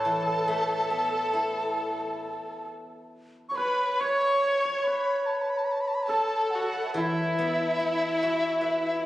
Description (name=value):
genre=chinese traditional, Chinese chamber ensemble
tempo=66-74 BPM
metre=4/4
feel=rubato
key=A gong mode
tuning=A4 = 440 Hz
part: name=reedy large dizi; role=melody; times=0.0-9.1 s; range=E5 to C#6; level=-29 LUFS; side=equal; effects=none
part: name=clear horsehead fiddle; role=second line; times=0.0-9.1 s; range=E4 to C#5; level=-33 LUFS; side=right 1 dB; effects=none
part: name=hammered dulcimer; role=second line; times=0.0-9.1 s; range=E4 to C#5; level=-31 LUFS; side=right 1 dB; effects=none
part: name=warm erhu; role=second line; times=0.0-9.1 s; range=E4 to B5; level=-31 LUFS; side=left 2 dB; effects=none
part: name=steel-string zither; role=accompaniment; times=0.0-9.1 s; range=A2 to B4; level=-32 LUFS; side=left 1 dB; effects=none
room=moderate concert hall reverb, RT60 2.3 s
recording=recorded on a phone in the room, club reverb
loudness=-24 LUFS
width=side -15 dB against mid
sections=0.0-3.6 A section; 3.6-9.1 B section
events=none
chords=none